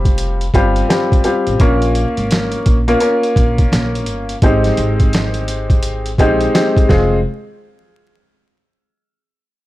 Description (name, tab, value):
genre	hip hop, boom-bap hip-hop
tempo	85 BPM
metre	4/4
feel	swing 63% on 16ths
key	unclear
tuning	A4 = 442 Hz
part	warm upright piano	accompaniment	0.0-7.2 s	G3 to Bb4	-16 LUFS	left 1 dB	cassette tape, high-pass filter, low-pass filter
part	upright bass	bass	0.0-7.2 s	F1 to Bb1	-18 LUFS	equal	none
part	boom bap sampler-style drum kit	drums	0.1-7.1 s	hi-hat, kick drum, snare drum	-15 LUFS	equal	none
room	small room reverb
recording	dry, gritty hardware recording, vinyl crackle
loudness	-12 LUFS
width	side -16 dB against mid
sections	0.0-7.2 A section; 7.2-9.7 B section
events	none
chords	0.0 Fsus2; 1.6 Bbm; 4.4 Abmaj7; 6.9 Fm; 7.2 N.C.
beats	0.19 0.90 | 1.60 2.31 3.01 3.72 | 4.42 5.13 5.84 6.54